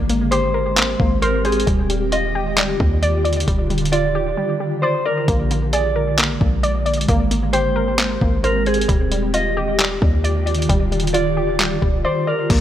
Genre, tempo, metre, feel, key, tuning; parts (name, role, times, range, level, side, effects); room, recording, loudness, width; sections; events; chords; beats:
hip hop, atmospheric cloud-rap; 133 BPM; 4/4; half-time; Eb major; A4 = 440 Hz
ethereal airy pad; sustained chords; 0.0-12.6 s; D3 to G4; -23 LUFS; right 1 dB; ensemble chorus, built-in reverb, sidechain pumping
warbly dusty pluck; arpeggios; 0.0-12.6 s; G3 to D5; -24 LUFS; left 1 dB; chorus, tape echo
warm 808-style bass; bass; 0.0-12.6 s; Eb1 to Eb2; -22 LUFS; equal
trip hop sampler-style drum kit; drums; 0.1-12.6 s; crash cymbal, handclaps, hi-hat, kick drum; -20 LUFS; equal
mellow electric guitar; melody; 0.3-12.5 s; Ab4 to Eb5; -22 LUFS; equal; warbly pitch drift, tape echo
light reverb; -16 LUFS; side -11 dB against mid
0.0-12.5 A section
silent gap 4.4-5.3
0.0 Abmaj9; 1.7 Ebmaj9; 5.3 Bb7; 7.1 Abmaj9; 8.9 Ebmaj9
0.32 0.77 1.22 | 1.67 2.12 2.58 3.03 | 3.48 3.93 4.38 4.83 | 5.28 5.73 6.18 6.63 | 7.09 7.54 7.99 8.44 | 8.89 9.34 9.79 10.24 | 10.70 11.15 11.60 12.05 | 12.50